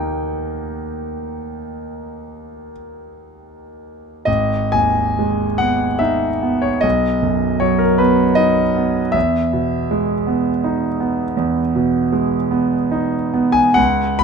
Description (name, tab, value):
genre	classical, romantic nocturne for solo piano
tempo	36-54 BPM (dotted quarters)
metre	12/8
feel	rubato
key	unclear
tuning	A4 = 440 Hz
part	clear grand piano	solo	0.0-14.2 s	G#1 to B5	-16 LUFS	right 1 dB	none
room	moderate studio reverb, RT60 0.8 s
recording	close, detailed microphones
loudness	-15 LUFS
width	side -5 dB against mid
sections	0.0-4.3 A section; 4.3-14.2 B section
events	none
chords	0.0 D#; 4.3 G#m; 6.8 B; 9.2 Emaj7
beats	1.23 2.71 | 4.27 5.61 6.85 8.01 | 9.15 10.28 11.39 12.52 | 13.77